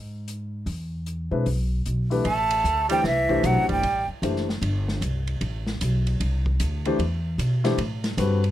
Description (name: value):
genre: modal jazz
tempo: 152 BPM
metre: 4/4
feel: swing 64% on 8ths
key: A dorian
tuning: A4 = 441 Hz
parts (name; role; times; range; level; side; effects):
- upright bass; bass; 0.0-8.5 s; F#1 to B2; -25 LUFS; equal; none
- open jazz drum kit; drums; 0.3-8.5 s; hi-hat, kick drum, ride cymbal, snare drum; -33 LUFS; equal; none
- warm grand piano; accompaniment; 1.3-4.5, 6.9-8.4 s; D3 to C5; -25 LUFS; left 3 dB; none
- breathy tenor saxophone; second line; 2.2-4.1 s; E3 to A3; -29 LUFS; right 4 dB; none
- breathy hollow jazz flute; melody; 2.3-4.1 s; E5 to A5; -22 LUFS; right 2 dB; none
room: little or no reverb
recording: none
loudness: -22 LUFS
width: side -13 dB against mid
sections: 0.0-2.3 A section; 2.3-8.5 B section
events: none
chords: 0.0 N.C.; 0.7 E7(no3); 2.3 Am11